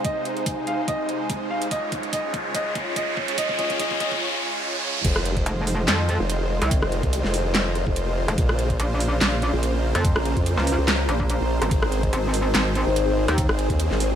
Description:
heavy wobble dubstep; 144 BPM; 4/4; swing 54% on 16ths, half-time; F minor; A4 = 439 Hz
warm grand piano; melody; 0.0-4.2 s; Eb5 to F5; -29 LUFS; equal; dub echo
supersaw chords; sustained chords; 0.0-14.2 s; C3 to Db5; -30 LUFS; right 1 dB; sidechain pumping
dubstep drum kit; drums; 0.0-14.1 s; crash cymbal, handclaps, hi-hat, rim click, snare drum; -26 LUFS; right 1 dB; high-pass filter on hats, high-pass filter on cymbals, high-pass filter on snare
electronic kick drum; drums; 0.0-13.8 s; -26 LUFS; equal
riser; sound effects; 0.0-5.0 s; -28 LUFS; equal
warbly tape-like pad; texture; 0.0-14.2 s; Db4 to Bb5; -30 LUFS; left 1 dB; chorus, built-in reverb, sidechain pumping
formant-sweep wobble bass; bass; 5.0-14.2 s; F1 to F2; -24 LUFS; equal; chorus, overdrive
metallic wobble bass; bass; 5.5-13.5 s; F1 to F2; -22 LUFS; equal; chorus, overdrive
light reverb, digital ambience; high-pass filter; -20 LUFS; side -9 dB against mid
0.0-5.0 A section; 5.0-14.2 B section
build-up 0.0-5.0; drum fill 0.0-4.2; riser 0.0-5.0; filter sweep on supersaw synth 0.0-5.0; filter sweep 0.0-5.0; break 4.2-5.0; drop 5.0-14.2
0.0 Ab; 1.7 Db; 5.0 Fm7; 8.4 Bbmadd9; 11.7 Ab

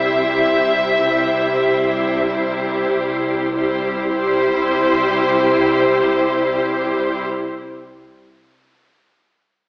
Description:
classical, slow romantic movement for string orchestra; 48-55 BPM; 4/4; rubato; C major; A4 = 440 Hz
rich chamber violin section; melody; 0.0-7.2 s; C5 to E5; -20 LUFS; left 1 dB
rich chamber violin section; second line; 0.0-7.3 s; G4 to C5; -21 LUFS; equal
warm studio viola section; accompaniment; 0.0-7.3 s; G3 to E4; -19 LUFS; equal
warm chamber cello section; bass; 0.0-7.2 s; C3; -28 LUFS; equal
warm chamber double bass section; bass; 0.0-7.2 s; C2; -35 LUFS; equal
wet scoring stage reverb, RT60 1.6 s; heard from further back in the room, AM radio sound; -15 LUFS; side -23 dB against mid
0.0-4.1 A section; 4.1-8.6 B section
slowing down 0.0-4.1
0.0 C

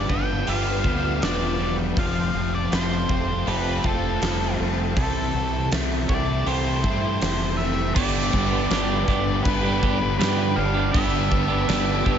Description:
rock, shoegaze and dream pop; 80 BPM; 4/4; straight; G mixolydian; A4 = 439 Hz
octave-fuzz lead guitar; melody; 0.0-12.2 s; A4 to G5; -29 LUFS; left 1 dB; distortion, analog delay
ensemble organ-string; sustained chords; 0.0-12.2 s; F4 to E6; -33 LUFS; left 1 dB; phaser, ensemble chorus
electric guitar at the edge of break-up; arpeggios; 0.0-12.2 s; E3 to G4; -33 LUFS; equal
cranked stack guitar; riff; 0.0-12.2 s; G2 to F4; -31 LUFS; equal; overdrive
crunchy overdriven guitar; riff; 0.0-12.2 s; G2 to A4; -30 LUFS; left 9 dB; ensemble chorus
overdriven electric guitar; riff; 0.0-12.2 s; G2 to G4; -29 LUFS; right 10 dB; reverse reverb
growling fingered electric bass; bass; 0.0-12.2 s; E1 to G2; -27 LUFS; equal; overdrive
huge arena drum kit; drums; 0.1-12.2 s; crash cymbal, hi-hat, kick drum, snare drum; -27 LUFS; equal
light reverb; nothing above 7.7 kHz; -20 LUFS; side -8 dB against mid
0.0-8.0 A section; 8.0-12.2 B section
0.0 G7; 2.0 Fadd9; 5.0 C6; 8.0 G

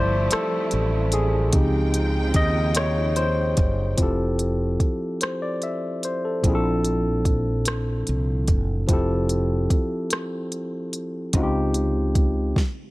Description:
slow six-eight R&B; 49 BPM (dotted quarters); 6/8; straight; F major; A4 = 439 Hz
barky tine electric piano; accompaniment; 0.0-12.6 s; Bb2 to E5; -24 LUFS; left 1 dB
warm studio string section; sustained chords; 0.0-4.0 s; C3 to G5; -31 LUFS; right 3 dB
mellow fretless electric bass; bass; 0.0-12.5 s; F1 to Eb2; -24 LUFS; equal
smooth R&B drum kit; drums; 0.3-12.8 s; hi-hat, kick drum, rim click, snare drum; -22 LUFS; equal
little or no reverb; -20 LUFS; side -19 dB against mid
0.0-4.0 A section; 4.0-12.9 B section
tine electric piano solo 0.0-4.0; stop 12.6-12.9
0.0 Fmaj7; 1.5 Dbmaj9#11; 4.0 Fmaj7; 6.4 Bbmaj9#11; 8.9 Fmaj7; 11.3 Dbmaj9#11

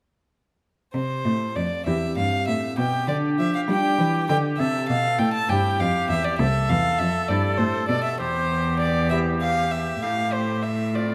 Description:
classical, baroque-style sonata movement with continuo; 66 BPM (dotted quarters); 12/8; rubato; C major; A4 = 442 Hz
warm violin; melody; 0.9-11.1 s; C5 to A5; -28 LUFS; equal
lute; accompaniment; 0.9-11.1 s; E2 to G4; -32 LUFS; equal
rich cello; bass; 0.9-11.1 s; C2 to G3; -27 LUFS; equal
clear oboe; second line; 2.8-11.1 s; F4 to A4; -30 LUFS; equal
moderate recital hall reverb, RT60 1.6 s; -23 LUFS; mono
0.9-11.1 A section
0.9 C; 2.8 G7/B; 4.6 C; 8.2 C/E; 10.0 F/A

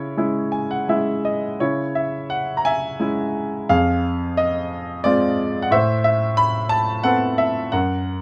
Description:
classical, lyrical solo piano; 88 BPM; 3/4; uneven beats, rubato; A4 = 440 Hz
clear baby grand piano; solo; 0.0-8.2 s; F2 to B5; -21 LUFS; equal
light reverb; close, detailed microphones; -21 LUFS; mono
0.0-1.6 A section; 1.6-8.2 B section
grand piano fill 0.2-1.6
0.0 C#m; 3.7 Fm; 5.7 Amadd9

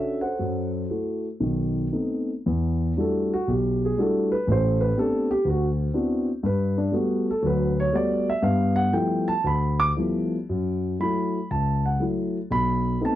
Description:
solo jazz; 119 BPM; 4/4; swing 66% on 8ths, rubato; A4 = 441 Hz
dark concert grand piano; solo; 0.0-13.2 s; A1 to D6; -22 LUFS; equal
light reverb; dry, close 1970s-style studio recording; -22 LUFS; side -13 dB against mid
0.0-2.5 A section; 2.5-13.2 B section
grand piano solo 2.5-13.2
0.4 F#m7b5; 1.4 B7b9; 2.5 Em11; 4.5 Am11; 5.5 D13; 6.4 Gmaj9; 8.4 G13; 10.5 F#m7; 12.5 B7b9

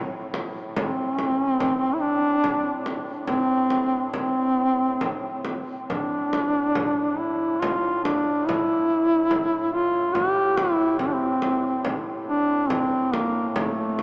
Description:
caucasian folk, Caucasian lament; 71 BPM; 3/4; rubato; A phrygian; A4 = 440 Hz
warm duduk; drone; 0.0-14.0 s; A2; -37 LUFS; equal
frame drum; percussion; 0.3-14.0 s; -34 LUFS; equal
mellow duduk; melody; 0.7-14.0 s; A3 to G4; -24 LUFS; equal
wet cathedral reverb, RT60 6.0 s; in a vast, echoing space, small speaker sound; -24 LUFS; mono
0.0-14.0 A section

